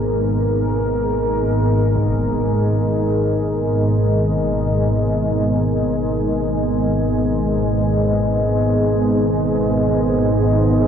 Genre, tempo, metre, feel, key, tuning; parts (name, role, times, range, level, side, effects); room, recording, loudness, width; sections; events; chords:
dark ambient drone; free time; G# minor; A4 = 443 Hz
deep dark ambient pad; sustained chords; 0.0-10.9 s; B3 to D#5; -19 LUFS; equal; chorus, built-in reverb
organ-like drone; drone; 0.0-10.9 s; G#1 to G#2; -19 LUFS; equal; ensemble chorus, built-in reverb
impact; percussion; 2.0-2.2 s; -36 LUFS; equal
wet cathedral reverb, RT60 5.7 s; worn, warbling old tape, cassette tape, warbly pitch drift; -16 LUFS; side -8 dB against mid
0.0-10.9 A section
filter sweep on synth drone 0.0-10.9
0.0 G#madd9